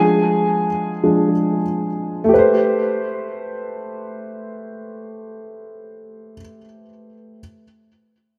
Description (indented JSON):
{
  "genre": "R&B",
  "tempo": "free time",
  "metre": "none",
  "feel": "none",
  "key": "A minor",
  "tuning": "A4 = 440 Hz",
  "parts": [
    { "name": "warm upright piano", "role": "accompaniment", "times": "0.0-7.4 s", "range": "F3 to Ab5", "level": "-20 LUFS", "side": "equal", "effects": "tape echo" }
  ],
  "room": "moderate echo chamber reverb, RT60 1.6 s, small room reverb",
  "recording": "echo-heavy mix",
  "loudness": "-19 LUFS",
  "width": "mono",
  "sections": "0.0-2.3 A section; 2.3-4.9 B section",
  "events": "upright piano solo 0.0-2.3",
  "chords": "0.0 Fm6; 2.3 Am9"
}